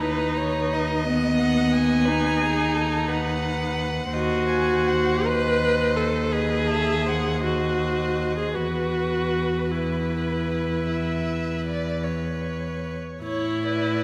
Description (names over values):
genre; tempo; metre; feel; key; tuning
classical, slow romantic movement for string quartet; 46-60 BPM (dotted quarters); 12/8; rubato; unclear; A4 = 439 Hz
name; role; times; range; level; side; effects
rich violin; melody; 0.0-14.0 s; B4 to G#5; -34 LUFS; equal; none
warm violin; second line; 0.0-14.0 s; G#4 to D#5; -33 LUFS; equal; none
rich viola; accompaniment; 0.0-14.0 s; B3 to B4; -27 LUFS; equal; none
rich cello; bass; 0.0-14.0 s; D#2 to A2; -29 LUFS; equal; none
room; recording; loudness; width
wet concert hall reverb, RT60 2.1 s; none; -24 LUFS; mono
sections
0.0-14.0 A section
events
none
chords
0.0 B/D#; 4.1 D#m6; 8.6 E5; 13.2 A